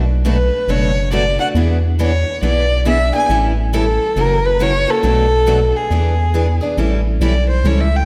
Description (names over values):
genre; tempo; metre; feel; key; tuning
acoustic string swing (jazz manouche); 138 BPM; 4/4; swing 63% on 8ths; A major; A4 = 440 Hz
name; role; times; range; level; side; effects
picked steel-string acoustic guitar; accompaniment; 0.0-7.9 s; B2 to A4; -24 LUFS; equal; none
picked steel-string acoustic guitar; accompaniment; 0.0-7.9 s; B2 to B4; -28 LUFS; equal; none
rubbery square bass; bass; 0.0-8.1 s; F#1 to E2; -19 LUFS; equal; none
warm violin; melody; 0.3-8.1 s; G#4 to G#5; -20 LUFS; equal; none
room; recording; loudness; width
moderate concert hall reverb, RT60 2.1 s; none; -16 LUFS; mono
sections
0.0-6.8 A section; 6.8-8.1 B section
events
violin solo 6.8-8.1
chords
0.0 Bm7; 1.6 E7; 3.3 A7; 4.2 F#7; 5.0 Bm7; 5.9 E7; 6.8 A7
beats
0.25 0.68 1.12 | 1.55 1.99 2.42 2.86 | 3.29 3.73 4.17 4.60 | 5.04 5.47 5.91 6.34 | 6.78 7.21 7.65